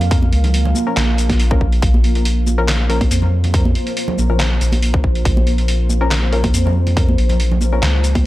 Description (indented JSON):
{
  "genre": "deep dubstep",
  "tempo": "140 BPM",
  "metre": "4/4",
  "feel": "swing 53% on 16ths, half-time",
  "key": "Bb minor",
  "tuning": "A4 = 439 Hz",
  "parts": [
    { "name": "deep dark ambient pad", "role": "sustained chords", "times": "0.0-8.3 s", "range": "Bb3 to F5", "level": "-24 LUFS", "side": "equal", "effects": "chorus, built-in reverb" },
    { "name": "soft dub sub bass", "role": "bass", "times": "0.0-8.3 s", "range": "Bb1 to F2", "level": "-16 LUFS", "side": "equal", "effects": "none" },
    { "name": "trip hop sampler-style drum kit", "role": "drums", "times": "0.0-8.2 s", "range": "handclaps, hi-hat, shaker, snare drum", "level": "-23 LUFS", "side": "equal", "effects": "none" },
    { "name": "congas", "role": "percussion", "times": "0.0-8.2 s", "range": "none", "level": "-24 LUFS", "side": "right 3 dB", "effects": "dub echo" },
    { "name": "electronic kick drum", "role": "drums", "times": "0.1-8.2 s", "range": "none", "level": "-17 LUFS", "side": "equal", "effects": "overdrive" },
    { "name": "filtered dub chord stab", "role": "stabs", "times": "0.9-7.8 s", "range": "F3 to Bb4", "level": "-25 LUFS", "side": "left 3 dB", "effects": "chorus, cassette tape, dub echo" }
  ],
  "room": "little or no reverb",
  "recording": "dry, gritty hardware recording",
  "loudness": "-13 LUFS",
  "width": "side -16 dB against mid",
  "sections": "0.0-8.3 A section",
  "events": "none",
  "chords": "0.0 Bbm"
}